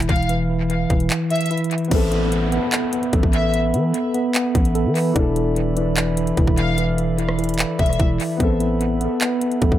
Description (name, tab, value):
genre	hip hop, trap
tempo	148 BPM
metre	4/4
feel	half-time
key	A minor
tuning	A4 = 439 Hz
part	mellow tine electric piano	arpeggios	0.0-9.8 s	E3 to A4	-22 LUFS	right 1 dB	medium stereo tremolo, tape echo
part	growling 808-style bass	bass	0.0-9.8 s	E1 to E3	-22 LUFS	equal	none
part	trap drum kit	drums	0.0-9.8 s	crash cymbal, handclaps, hi-hat, kick drum, rim click	-22 LUFS	equal	tape echo
part	dark symphonic violin section	second line	0.1-3.5, 6.6-8.0 s	E5 to F5	-27 LUFS	left 3 dB	tape echo
part	dark baby grand piano	accompaniment	1.9-9.8 s	E3 to A4	-27 LUFS	left 4 dB	tape echo
part	glass harmonica	sustained chords	1.9-9.8 s	A4 to B5	-30 LUFS	equal	none
part	downlifter	sound effects	1.9-5.2 s	none	-32 LUFS	left 1 dB	none
room	light reverb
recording	echo-heavy mix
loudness	-17 LUFS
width	side -12 dB against mid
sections	0.0-1.9 A section; 1.9-9.8 B section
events	kick muted 1.1-1.9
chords	0.0 N.C.; 1.9 Amadd9; 5.2 E7sus4; 8.4 Amadd9